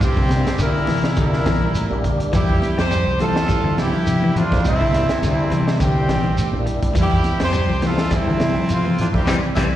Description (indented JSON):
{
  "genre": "afrobeat",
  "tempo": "104 BPM",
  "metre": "4/4",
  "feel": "swing 55% on 16ths",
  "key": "unclear",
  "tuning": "A4 = 440 Hz",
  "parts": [
    { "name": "warm horn section", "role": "melody", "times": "0.0-9.6 s", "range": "C4 to C5", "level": "-24 LUFS", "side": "right 1 dB", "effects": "plate reverb, slapback echo" },
    { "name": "brilliant trumpet", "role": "second line", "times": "0.0-9.7 s", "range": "C4 to G4", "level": "-28 LUFS", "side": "right 1 dB", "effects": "plate reverb, slapback echo" },
    { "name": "raspy baritone saxophone", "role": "second line", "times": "0.0-9.7 s", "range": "E2 to C3", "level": "-30 LUFS", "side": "right 2 dB", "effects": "plate reverb, slapback echo" },
    { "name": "tonewheel organ", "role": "accompaniment", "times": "0.0-9.7 s", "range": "G3 to G4", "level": "-29 LUFS", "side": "right 1 dB", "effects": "slow rotary speaker, overdrive, chorus vibrato, plate reverb, slapback echo" },
    { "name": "deep dub fingered electric bass", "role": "bass", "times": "0.0-9.7 s", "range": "Bb1 to F3", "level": "-22 LUFS", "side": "equal", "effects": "none" },
    { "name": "crunchy breakbeat drum kit", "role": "drums", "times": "0.0-9.7 s", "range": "hi-hat, kick drum, snare drum", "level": "-23 LUFS", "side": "equal", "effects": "none" },
    { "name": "congas", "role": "percussion", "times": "0.0-9.7 s", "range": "none", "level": "-29 LUFS", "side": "right 3 dB", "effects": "slapback echo" },
    { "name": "shekere", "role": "percussion", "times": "0.0-9.7 s", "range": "none", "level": "-28 LUFS", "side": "right 1 dB", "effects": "slapback echo" },
    { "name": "semi-hollow electric guitar", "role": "arpeggios", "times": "0.2-9.7 s", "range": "C3 to G3", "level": "-23 LUFS", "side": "left 4 dB", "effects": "plate reverb, slapback echo, tape echo" }
  ],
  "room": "moderate club reverb, RT60 0.8 s",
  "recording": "live gig heard through the venue's PA, recital hall reverb",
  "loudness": "-16 LUFS",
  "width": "side -12 dB against mid",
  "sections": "0.0-9.8 A section",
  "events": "band accent 9.3-9.8",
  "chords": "0.0 C7; 2.3 Fmaj9; 4.7 C7; 7.0 Fmaj9"
}